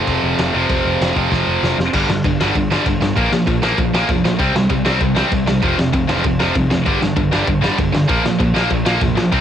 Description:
punk rock; 195 BPM; 4/4; straight; A4 = 440 Hz
tight distorted guitar; riff; 0.0-9.4 s; F2 to C4; -20 LUFS; left 10 dB; distortion, cassette tape
tight distorted guitar; riff; 0.0-9.4 s; F2 to C4; -19 LUFS; right 8 dB; distortion, cassette tape
picked electric bass; bass; 0.0-9.4 s; F1 to C2; -23 LUFS; equal
loose indie drum kit; drums; 0.1-9.4 s; crash cymbal, kick drum, snare drum; -20 LUFS; equal; cassette tape
little or no reverb; home recording on cassette; -14 LUFS; side -9 dB against mid
0.0-1.9 A section; 1.9-9.4 B section
half time 0.0-1.9; drum fill 1.3-1.9
0.0 F5; 1.9 G5; 3.2 Bb5; 4.4 C5; 5.6 F5; 6.9 G5; 8.1 Bb5
0.08 0.39 | 0.69 1.00 1.31 1.62 | 1.93 2.24 2.54 2.85 | 3.16 3.47 3.78 4.09 | 4.40 4.70 5.01 5.32 | 5.63 5.94 6.24 6.55 | 6.86 7.17 7.47 7.78 | 8.09 8.40 8.71 9.01 | 9.32

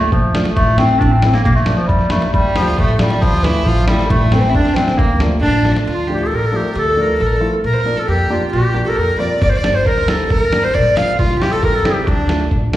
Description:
klezmer; 136 BPM; 2/4; straight; D minor; A4 = 441 Hz
warm clarinet; melody; 0.0-12.5 s; E3 to F5; -17 LUFS; equal; slapback echo
upright bass; bass; 0.1-12.6 s; G1 to F2; -18 LUFS; equal
lo-fi sampler-style drum kit; drums; 0.1-5.9, 9.4-12.8 s; kick drum, snare drum; -19 LUFS; equal
warm upright piano; accompaniment; 0.4-12.8 s; E3 to F4; -23 LUFS; left 1 dB; slapback echo
rich violin; second line; 2.3-12.5 s; G3 to F5; -22 LUFS; right 1 dB; slapback echo
moderate digital room reverb, RT60 1.2 s, small room ambience; live gig heard through the venue's PA, recital hall reverb; -13 LUFS; side -14 dB against mid
0.0-5.9 A section; 5.9-12.8 B section
drum fill 5.7
0.0 Dm; 0.6 Am; 1.5 Bb; 2.3 Dm; 4.1 Am; 5.0 Dm; 7.6 Bb; 9.4 Gm; 11.2 C; 12.1 Dm
0.12 | 0.57 1.01 | 1.45 1.90 | 2.34 2.78 | 3.22 3.67 | 4.11 4.55 | 4.99 5.43 | 5.88 6.32 | 6.76 7.21 | 7.65 8.09 | 8.53 8.98 | 9.42 9.86 | 10.30 10.75 | 11.19 11.63 | 12.07 12.51

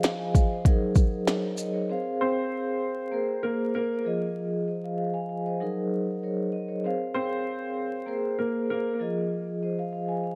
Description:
hip hop, boom-bap hip-hop; 97 BPM; 4/4; swing 55% on 16ths; Bb minor; A4 = 439 Hz
vibraphone with soft mallets; accompaniment; 0.0-10.4 s; F3 to Ab5; -30 LUFS; equal; cassette tape, high-pass filter, low-pass filter
glitchy drum kit; drums; 0.0-1.7 s; hi-hat, kick drum, shaker, snare drum; -24 LUFS; equal; overdrive
warm upright piano; melody; 2.2-9.0 s; Bb3 to C5; -33 LUFS; equal; high-pass filter, low-pass filter, analog delay
light reverb; dark, warm production, vinyl crackle; -28 LUFS; mono
0.0-1.9 A section; 1.9-10.4 B section
0.0 Fm7; 0.7 Gb69; 1.9 Bb7sus2/C (rootless); 3.1 Bbsus2; 4.1 Fm7; 5.6 Gb69; 6.8 Bb7sus2/C (rootless); 8.1 Bbsus2; 9.0 Fm7
0.04 0.66 1.27 | 1.89 2.51 3.13 3.75 | 4.37 4.99 5.61 6.22 | 6.84 7.46 8.08 8.70 | 9.32 9.94

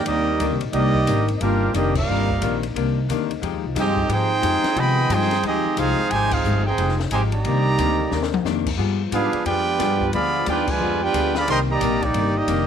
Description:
jazz, big band swing; 179 BPM; 4/4; swing 63% on 8ths; C minor; A4 = 440 Hz
clear trumpet section; melody; 0.0-12.7 s; Bb3 to C6; -22 LUFS; right 2 dB
bright trombone section; second line; 0.0-12.7 s; C3 to Ab4; -27 LUFS; right 11 dB
muted trombone section; sustained chords; 0.0-12.7 s; C3 to F4; -32 LUFS; left 13 dB
upright bass; bass; 0.0-12.7 s; F1 to C3; -24 LUFS; equal
archtop guitar, miked and amplified; accompaniment; 0.1-12.7 s; C3 to Ab4; -27 LUFS; left 13 dB
open jazz drum kit; drums; 0.1-12.6 s; crash cymbal, hi-hat, kick drum, ride cymbal, snare drum, toms; -31 LUFS; left 4 dB
light reverb, studio reverb; 1960s-style stereo with parts hard left and right; -18 LUFS; side -8 dB against mid
0.0-12.7 A section
band accent 1.9, 6.3, 10.6; drum fill 8.1-8.5
0.0 Cm9; 3.4 Fm9; 7.4 Cm9; 8.8 G7b9; 11.5 Cm9
0.06 0.40 | 0.73 1.07 1.41 1.74 | 2.08 2.41 2.75 3.08 | 3.42 3.75 4.09 4.43 | 4.76 5.10 5.43 5.77 | 6.11 6.44 6.78 7.11 | 7.45 7.78 8.12 8.45 | 8.79 9.12 9.46 9.79 | 10.13 10.46 10.80 11.13 | 11.47 11.81 12.14 12.48

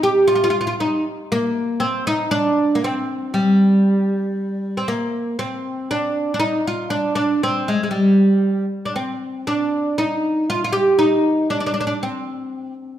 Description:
arabic; 118 BPM; 4/4; straight; G maqam kurd; A4 = 441 Hz
oud; melody; 0.0-12.7 s; G3 to G4; -17 LUFS; equal
wet recital hall reverb, RT60 1.5 s; recorded in a church or concert hall; -17 LUFS; side -11 dB against mid
0.0-5.4 A section; 5.4-13.0 B section
0.26 0.77 | 1.28 1.80 2.31 2.82 | 3.33 3.84 4.36 4.87 | 5.38 5.89 6.40 6.91 | 7.42 7.93 8.44 8.95 | 9.46 9.96 10.47 10.98 | 11.49 12.00 12.51

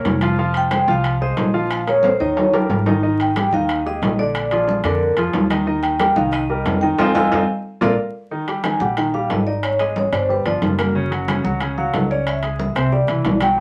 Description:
Afro-Cuban jazz; 182 BPM; 4/4; straight; Eb major; A4 = 439 Hz
warm grand piano; accompaniment; 0.0-13.6 s; Db3 to F5; -24 LUFS; equal
upright bass; bass; 0.0-13.6 s; F1 to F2; -27 LUFS; equal
congas; percussion; 0.1-13.6 s; -28 LUFS; equal
timbales; percussion; 0.1-13.6 s; -26 LUFS; equal
vibraphone with medium mallets; melody; 0.6-13.6 s; Bb4 to Ab5; -23 LUFS; equal
moderate studio reverb, RT60 0.5 s; vinyl crackle; -19 LUFS; mono
0.0-8.3 A section; 8.3-13.6 B section
drum fill 2.0-3.0, 7.3-8.3; band accent 7.0-8.3; vibraphone solo 8.3-13.6
0.4 Fm11; 1.7 Bb7sus4; 2.4 Eb; 3.0 Ab5; 4.3 Bb7; 5.7 Eb; 6.3 Cm7; 7.0 Fm7; 7.7 Bb; 8.3 Eb; 9.6 Ab5; 10.3 G7#9; 11.0 Gb5; 12.3 Dbm; 12.9 Cadd9
0.05 | 0.38 0.71 1.04 1.38 | 1.71 2.04 2.37 2.70 | 3.03 3.36 3.69 4.02 | 4.35 4.68 5.01 5.34 | 5.67 6.00 6.33 6.66 | 6.99 7.32 7.65 7.98 | 8.31 8.64 8.97 9.30 | 9.63 9.96 10.29 10.62 | 10.95 11.28 11.61 11.94 | 12.27 12.60 12.93 13.26 | 13.58

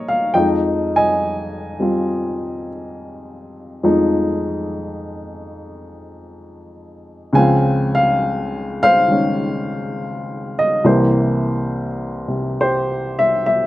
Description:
solo jazz; 69 BPM; 4/4; swing 68% on 8ths; F minor; A4 = 439 Hz
dark upright piano; solo; 0.0-13.7 s; C2 to Ab5; -16 LUFS; equal; slapback echo
little or no reverb; recorded outdoors, with no room sound; -16 LUFS; side -16 dB against mid
0.0-13.7 A section
0.3 Fm7; 7.3 Dbmaj7; 10.8 C7
| 0.34 1.22 2.09 2.97 | 3.84 4.72 5.59 6.46 | 7.34 8.21 9.09 9.96 | 10.84 11.71 12.58 13.46

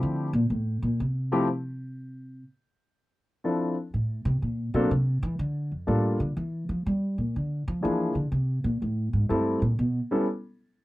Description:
jazz piano trio; 123 BPM; 3/4; swing 68% on 8ths; A4 = 440 Hz
warm concert grand piano; melody; 0.0-10.3 s; F3 to A4; -26 LUFS; left 1 dB
upright bass; bass; 0.0-10.0 s; F2 to G3; -26 LUFS; equal
little or no reverb; dry, close 1970s-style studio recording; -25 LUFS; side -18 dB against mid
0.0-2.5 A section; 2.5-10.8 A section
upright bass solo 0.0-10.8
0.0 F (rootless); 2.5 N.C.; 3.9 D7(no3) (rootless); 5.4 Gm9; 6.8 Bb7#11; 8.3 Am7; 9.8 N.C.
0.01 0.49 | 0.98 1.47 1.96 | 2.45 2.94 3.43 | 3.92 4.41 4.89 | 5.38 5.87 6.36 | 6.85 7.34 7.82 | 8.31 8.80 9.29 | 9.77

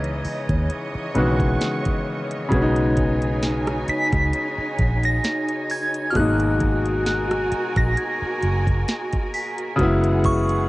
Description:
contemporary R&B; 66 BPM; 4/4; swing 54% on 16ths; B major; A4 = 440 Hz
glassy synth bell; melody; 0.0-10.7 s; C#6 to B6; -27 LUFS; right 1 dB; chorus, cassette tape
clear concert grand piano; accompaniment; 0.0-10.7 s; B2 to F#4; -23 LUFS; left 1 dB
rich studio string section; sustained chords; 0.0-10.7 s; E3 to C#6; -29 LUFS; right 1 dB
vintage muted fingered electric bass; bass; 0.0-10.7 s; F#1 to D#2; -23 LUFS; equal
smooth R&B drum kit; drums; 0.0-10.7 s; hi-hat, kick drum, rim click, snare drum; -25 LUFS; equal; vintage 12-bit sampler grit, cassette tape
large celesta; texture; 1.2-10.2 s; F#6 to B6; -33 LUFS; right 2 dB; analog delay
light reverb; home recording on cassette, nothing above 10.4 kHz; -19 LUFS; side -19 dB against mid
0.0-10.7 A section
0.0 C#m9; 2.5 B69; 6.2 G#m9; 9.8 F#9sus4
0.70 1.61 | 2.52 3.43 4.34 5.25 | 6.16 7.07 7.97 8.88 | 9.79

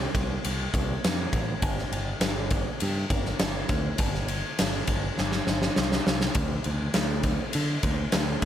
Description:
classic rock; 101 BPM; 4/4; straight; A4 = 440 Hz
growling picked electric bass; bass; 0.0-8.5 s; G1 to D3; -30 LUFS; equal; overdrive
big rock drum kit; drums; 0.1-8.5 s; kick drum, ride cymbal, snare drum; -26 LUFS; equal
light reverb; -24 LUFS; side -10 dB against mid
0.0-8.5 A section
drum fill 5.2-6.4
0.44 1.04 | 1.63 2.22 2.81 3.40 | 4.00 4.59 5.18 5.77 | 6.36 6.95 7.55 8.14

